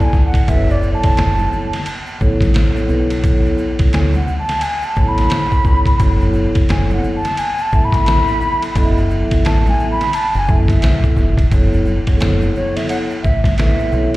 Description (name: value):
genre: hip hop, jazz-hop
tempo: 87 BPM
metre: 4/4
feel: swing 61% on 16ths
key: F# minor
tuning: A4 = 438 Hz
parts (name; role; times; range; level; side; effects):
- breathy mellow concert flute; melody; 0.0-14.1 s; C#5 to B5; -20 LUFS; equal; slapback echo
- vibraphone with soft mallets; accompaniment; 0.0-14.2 s; F#3 to E5; -21 LUFS; equal; slapback echo
- trip hop sampler-style drum kit; drums; 0.0-14.2 s; hi-hat, kick drum, ride cymbal, snare drum; -17 LUFS; equal; none
- tube shaker and congas; percussion; 0.0-14.2 s; none; -30 LUFS; equal; slapback echo
- deep dub fingered electric bass; bass; 0.1-14.2 s; E1 to F#2; -16 LUFS; equal; none
room: little or no reverb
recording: live gig heard through the venue's PA, recital hall reverb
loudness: -13 LUFS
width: side -18 dB against mid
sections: 0.0-11.5 A section; 11.5-14.2 B section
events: flute solo 0.0-11.5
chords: 0.5 F#m7; 2.9 B9sus4; 6.0 F#m11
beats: | 0.48 1.17 1.86 2.55 | 3.24 3.93 4.62 5.31 | 6.00 6.69 7.38 8.07 | 8.76 9.45 10.13 10.82 | 11.51 12.20 12.89 13.58